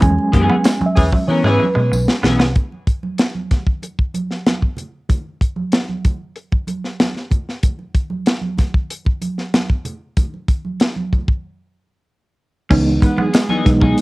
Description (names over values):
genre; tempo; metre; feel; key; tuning
funk; 95 BPM; 4/4; straight; C# minor; A4 = 436 Hz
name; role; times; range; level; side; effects
semi-hollow electric guitar; riff; 0.0-2.5, 12.7-13.9 s; E3 to C#4; -23 LUFS; right 2 dB; cassette tape
mellow reed electric piano; stabs; 0.0-2.5, 12.7-14.0 s; D#3 to G#5; -18 LUFS; right 1 dB; fast tremolo, cassette tape
vintage muted fingered electric bass; bass; 0.0-2.5, 12.7-13.9 s; B1 to E3; -18 LUFS; equal; none
tight funk drum kit; drums; 0.0-14.0 s; crash cymbal, hi-hat, kick drum, snare drum; -16 LUFS; equal; none
congas; percussion; 0.0-14.0 s; none; -26 LUFS; right 3 dB; none
clean electric guitar; accompaniment; 0.3-2.4, 13.5-14.0 s; E3 to A#4; -19 LUFS; left 3 dB; analog chorus, cassette tape
tambourine; percussion; 0.6-2.1, 13.3-13.5 s; none; -35 LUFS; left 2 dB; none
clear horn section; second line; 1.0-1.6, 13.0-13.6 s; E3 to B4; -25 LUFS; equal; cassette tape, tape echo
room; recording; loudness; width
moderate studio reverb, RT60 0.6 s; home recording on cassette; -15 LUFS; side -21 dB against mid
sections
0.0-2.6 A section; 2.6-12.7 B section; 12.7-14.0 C section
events
reed electric piano solo 0.0-2.6; band accent 0.0-2.6; drum fill 1.3-2.6; break 11.4-12.7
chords
0.0 E6; 2.6 N.C.; 12.7 C#m9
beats
| 0.03 0.66 1.29 1.93 | 2.56 3.19 3.83 4.46 | 5.10 5.73 6.37 7.00 | 7.64 8.27 8.91 9.54 | 10.17 10.81 11.44 12.07 | 12.71 13.34 13.97